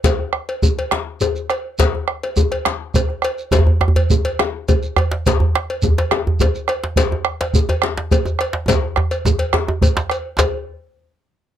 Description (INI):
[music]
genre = west african traditional, West African drum ensemble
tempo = 139 BPM (dotted quarters)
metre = 12/8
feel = straight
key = none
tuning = none
[part]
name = bombo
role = percussion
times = 0.0-10.5 s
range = none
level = -18 LUFS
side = right 2 dB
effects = none
[part]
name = djembe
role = percussion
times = 0.0-10.5 s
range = none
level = -22 LUFS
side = left 7 dB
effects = none
[part]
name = shekere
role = percussion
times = 0.0-10.5 s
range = none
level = -24 LUFS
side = right 2 dB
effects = none
[part]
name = cowbell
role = percussion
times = 0.1-10.5 s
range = none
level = -24 LUFS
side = left 1 dB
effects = none
[part]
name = djembe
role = percussion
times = 3.5-10.5 s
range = none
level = -19 LUFS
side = right 1 dB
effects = none
[sound]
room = little or no reverb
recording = close, detailed microphones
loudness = -16 LUFS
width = side -10 dB against mid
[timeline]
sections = 0.0-10.4 A section; 10.4-11.6 B section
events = speeding up 0.0-11.6; drum fill 8.7-10.4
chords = none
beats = | 0.04 0.48 0.92 1.35 | 1.79 2.22 2.66 3.09 | 3.53 3.96 4.39 4.83 | 5.26 5.69 6.12 6.55 | 6.98 7.41 7.83 8.26 | 8.69 9.12 9.54 9.97 | 10.39